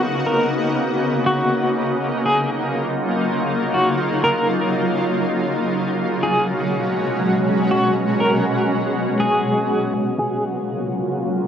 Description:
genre	hip hop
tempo	121 BPM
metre	4/4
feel	half-time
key	F# major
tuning	A4 = 442 Hz
part	shimmering ambient pad	sustained chords	0.0-11.5 s	B2 to F#4	-19 LUFS	equal	chorus, built-in reverb, low-pass filter
part	electric guitar at the edge of break-up	melody	0.3-10.4 s	F#4 to A#4	-22 LUFS	equal	tremolo, low-pass filter, digital delay
room	moderate huge ambient reverb, RT60 6.8 s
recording	worn, warbling old tape, cassette tape, warbly pitch drift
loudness	-17 LUFS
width	side -8 dB against mid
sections	0.0-9.9 A section; 9.9-11.5 B section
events	filter sweep 9.9-11.5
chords	0.0 Bmaj9; 2.0 D#m9; 6.0 C#7sus4; 9.9 F#maj7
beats	| 0.02 0.52 1.01 1.51 | 2.01 2.50 3.00 3.49 | 3.99 4.49 4.98 5.48 | 5.97 6.47 6.96 7.46 | 7.96 8.45 8.95 9.44 | 9.94 10.44 10.93 11.43

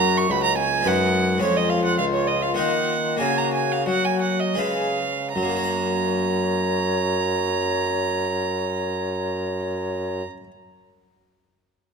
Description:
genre	classical, baroque-style sonata movement with continuo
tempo	75-108 BPM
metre	3/4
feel	straight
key	F# major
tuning	A4 = 440 Hz
part	mellow baroque flute	melody	0.0-10.2 s	D#4 to C#5	-29 LUFS	left 5 dB	none
part	rich violin	second line	0.0-10.2 s	C#5 to C#6	-24 LUFS	right 7 dB	none
part	harpsichord	accompaniment	0.0-10.5 s	C#2 to F#5	-26 LUFS	left 4 dB	none
part	warm bassoon	bass	0.0-10.2 s	C#2 to F#3	-26 LUFS	equal	none
room	moderate recital hall reverb, RT60 1.9 s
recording	none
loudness	-20 LUFS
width	side -5 dB against mid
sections	0.0-5.4 A section; 5.4-10.1 B section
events	slowing down 0.6-5.4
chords	0.0 F#; 0.9 G#m7/F#; 1.4 C#/E#; 2.6 D#m; 3.2 F#/C#; 4.6 C#7; 5.4 F#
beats	0.30 0.86 | 1.42 2.00 2.59 | 3.21 3.87 4.58 | 5.35 6.14 6.93 | 7.73 8.52 9.32

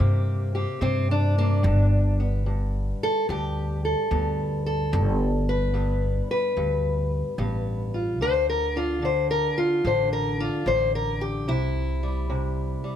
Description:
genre	acoustic country blues, solo or duo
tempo	73 BPM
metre	4/4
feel	swing 67% on 8ths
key	G mixolydian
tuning	A4 = 440 Hz
part	fingerpicked steel-string acoustic guitar	melody	0.0-13.0 s	G2 to C5	-25 LUFS	left 1 dB	plate reverb
part	upright bass	bass	0.0-12.8 s	G1 to G2	-25 LUFS	equal	none
room	light reverb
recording	none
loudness	-22 LUFS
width	side -10 dB against mid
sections	0.0-13.0 A section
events	steel-string acoustic guitar solo 0.0-13.0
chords	0.0 C7(no3); 1.6 G; 8.2 D5; 11.5 C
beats	0.82 | 1.64 2.46 3.29 4.11 | 4.93 5.75 6.57 7.39 | 8.21 9.03 9.85 10.66 | 11.48 12.30

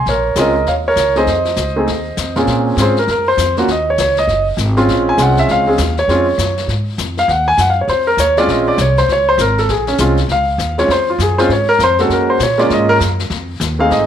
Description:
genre	jazz piano trio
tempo	200 BPM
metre	4/4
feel	swing 62% on 8ths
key	Bb minor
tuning	A4 = 441 Hz
part	warm grand piano	melody	0.0-14.1 s	Bb2 to Ab5	-13 LUFS	equal	none
part	upright bass	bass	0.0-14.1 s	Gb1 to Bb2	-19 LUFS	equal	none
part	jazz brush drum kit	drums	0.1-14.1 s	brushed snare drum, hi-hat, snare drum	-24 LUFS	left 9 dB	none
room	moderate plate reverb, RT60 0.9 s, small room ambience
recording	1960s-style stereo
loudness	-12 LUFS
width	side -9 dB against mid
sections	0.0-2.5 A section; 2.5-14.1 B section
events	grand piano solo 2.5-14.1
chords	0.1 Bbm7; 0.7 Eb5; 1.3 F7(no3); 2.5 Bbm7; 3.7 Ebm7; 4.9 Bbm7; 7.3 Ebm9; 8.5 Bbm7; 12.1 Gbmaj7; 13.3 F7#9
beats	| 0.06 0.36 0.66 0.96 | 1.26 1.57 1.87 2.17 | 2.47 2.77 3.07 3.37 | 3.68 3.98 4.28 4.58 | 4.88 5.18 5.48 5.78 | 6.08 6.39 6.69 6.99 | 7.29 7.59 7.89 8.19 | 8.49 8.79 9.09 9.39 | 9.69 9.99 10.29 10.59 | 10.89 11.20 11.50 11.80 | 12.10 12.40 12.70 13.00 | 13.30 13.60 13.90

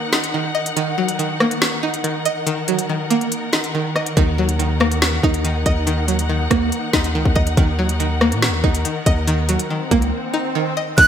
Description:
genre	hip hop, drill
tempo	141 BPM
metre	4/4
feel	half-time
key	Eb minor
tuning	A4 = 440 Hz
part	string-like resonator pluck	accompaniment	0.0-11.1 s	Eb3 to Eb5	-21 LUFS	right 1 dB	chorus
part	dark symphonic string section	sustained chords	0.0-10.9 s	Eb3 to Gb5	-25 LUFS	left 1 dB	none
part	drill drum kit	drums	0.1-11.1 s	crash cymbal, hi-hat, kick drum, rim click, snare drum	-19 LUFS	equal	none
part	long sustained 808-style bass	bass	4.2-11.1 s	Db2 to Bb2	-20 LUFS	equal	none
part	swell	sound effects	9.7-11.0 s	none	-27 LUFS	equal	none
part	jazz flute	melody	11.0-11.1 s	Gb6	-7 LUFS	right 2 dB	none
room	moderate lush hall reverb, RT60 1.6 s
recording	bright 1980s-style digital production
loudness	-16 LUFS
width	side -9 dB against mid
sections	0.0-11.0 A section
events	break 0.0-4.2, 10.1-11.0; swell 9.7-11.0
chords	0.0 Ebm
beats	0.34 | 0.77 1.19 1.62 2.04 | 2.47 2.89 3.32 3.74 | 4.17 4.60 5.02 5.45 | 5.87 6.30 6.72 7.15 | 7.57 8.00 8.43 8.85 | 9.28 9.70 10.13 10.55 | 10.98

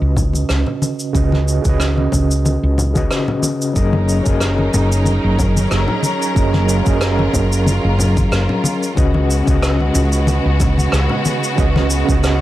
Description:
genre	sunset chillout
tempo	92 BPM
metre	4/4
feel	swing 55% on 16ths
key	F# major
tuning	A4 = 441 Hz
part	overdriven tine electric piano	accompaniment	0.0-12.4 s	C#3 to D#5	-20 LUFS	moving between left 4 dB and right 7 dB	medium tremolo, auto-pan, analog delay
part	woody fretless electric bass	bass	0.0-12.4 s	F#1 to C#2	-16 LUFS	equal	none
part	cabasa and rim click	drums	0.2-12.4 s	none	-24 LUFS	equal	none
part	electronic kick drum	drums	0.2-12.2 s	none	-19 LUFS	equal	none
part	congas	percussion	0.2-11.9 s	none	-22 LUFS	left 2 dB	none
part	clear symphonic string section	sustained chords	3.8-12.4 s	C#3 to A#4	-22 LUFS	left 1 dB	none
room	studio reverb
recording	none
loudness	-14 LUFS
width	side -14 dB against mid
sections	0.0-12.4 A section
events	break 3.1-3.8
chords	0.0 C#7sus4; 3.8 F#6; 9.0 C#7sus4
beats	0.50 | 1.15 1.80 2.45 3.10 | 3.76 4.41 5.06 5.71 | 6.37 7.02 7.67 8.32 | 8.97 9.63 10.28 10.93 | 11.58 12.24

